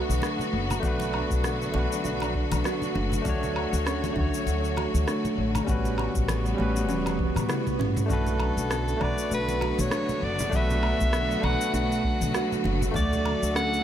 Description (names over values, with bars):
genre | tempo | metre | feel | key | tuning
sunset chillout | 99 BPM | 4/4 | swing 57% on 16ths | B minor | A4 = 440 Hz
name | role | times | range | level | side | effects
barky tine electric piano | accompaniment | 0.0-13.8 s | D3 to D5 | -31 LUFS | equal | overdrive, auto-pan, ping-pong delay
clear studio string section | sustained chords | 0.0-13.8 s | C#3 to C#5 | -32 LUFS | left 2 dB | none
buzzing kalimba | arpeggios | 0.0-13.8 s | A3 to F#4 | -35 LUFS | right 4 dB | ping-pong delay
wind-like tuned noise texture | texture | 0.0-8.1 s | C#6 | -43 LUFS | right 5 dB | built-in reverb
upright bass | bass | 0.1-13.8 s | E1 to A2 | -29 LUFS | equal | none
smooth R&B drum kit | drums | 0.1-13.8 s | cabasa, rim click, toms, woodblock | -34 LUFS | equal | overdrive
congas | percussion | 0.1-13.4 s | none | -36 LUFS | left 3 dB | none
electronic kick drum | drums | 0.8-13.1 s | none | -30 LUFS | equal | none
swell | sound effects | 7.2-8.1 s | none | -37 LUFS | right 4 dB | none
clear soprano saxophone | melody | 8.1-13.8 s | A4 to F#5 | -30 LUFS | equal | ping-pong delay
room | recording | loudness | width
light reverb | none | -24 LUFS | side -10 dB against mid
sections
0.0-8.1 A section; 8.1-13.8 B section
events
drum fill 6.9-8.1; swell 7.2-8.1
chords
0.0 Bm7; 3.3 Dmaj7; 5.7 A13; 8.1 Bm7; 13.0 Dmaj7